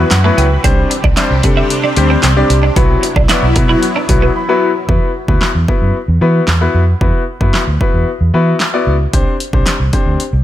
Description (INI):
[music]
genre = dance-pop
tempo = 113 BPM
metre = 4/4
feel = straight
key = E minor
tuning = A4 = 443 Hz
[part]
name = clear baby grand piano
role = accompaniment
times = 0.0-10.2 s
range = F#3 to B5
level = -16 LUFS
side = left 3 dB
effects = sidechain pumping
[part]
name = lush unison pad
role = sustained chords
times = 0.0-4.9 s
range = C3 to B4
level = -20 LUFS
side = left 1 dB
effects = chorus, phaser, sidechain pumping
[part]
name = twelve-string electric guitar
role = riff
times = 0.0-4.3 s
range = A3 to E4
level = -20 LUFS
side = right 6 dB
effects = ensemble chorus
[part]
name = vintage muted fingered electric bass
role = bass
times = 0.0-10.4 s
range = B1 to E3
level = -13 LUFS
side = equal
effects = sidechain pumping
[part]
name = punchy analog drum machine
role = drums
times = 0.1-10.3 s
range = handclaps, hi-hat, kick drum, snare drum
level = -15 LUFS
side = equal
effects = none
[sound]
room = digital ambience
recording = none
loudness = -10 LUFS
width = side -13 dB against mid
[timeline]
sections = 0.0-4.9 A section; 4.9-10.4 B section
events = grand piano fill 0.0-0.6, 4.1-4.9; drums muted 4.4-4.9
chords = 0.0 Esus2; 0.6 Csus2; 2.8 Bsus4; 4.9 Esus2; 9.1 Csus2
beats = 0.11 | 0.64 1.17 1.70 2.23 | 2.77 3.30 3.83 4.36 | 4.89 5.42 5.95 6.48 | 7.01 7.54 8.07 8.61 | 9.14 9.67 10.20